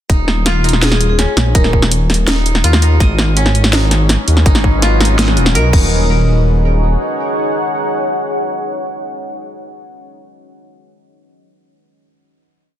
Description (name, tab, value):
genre	half-time drum and bass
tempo	165 BPM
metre	4/4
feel	half-time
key	Eb minor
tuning	A4 = 441 Hz
part	koto	arpeggios	0.1-8.1 s	Db4 to Eb5	-20 LUFS	left 1 dB	ping-pong delay
part	dark detuned saw bass	bass	0.1-7.0 s	Eb1 to Eb2	-13 LUFS	equal	none
part	drum and bass drum kit	drums	0.1-5.8 s	crash cymbal, hi-hat, snare drum	-16 LUFS	equal	studio reverb
part	electronic kick drum	drums	0.1-5.8 s	none	-12 LUFS	equal	studio reverb
part	vibraphone with hard mallets	melody	0.8-1.7 s	Ab4 to Bb4	-22 LUFS	left 3 dB	ping-pong delay
part	deep dark ambient pad	sustained chords	3.9-9.6 s	Gb3 to Gb5	-19 LUFS	equal	chorus, built-in reverb, vintage 12-bit sampler grit, sidechain pumping
room	light reverb, digital ambience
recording	dense, heavily limited modern master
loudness	-11 LUFS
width	side -11 dB against mid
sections	0.1-5.9 drop; 5.9-8.8 final chord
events	drop 0.1-5.9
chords	0.1 Eb5; 3.0 Abm; 5.7 Ebsus4; 5.9 Ebm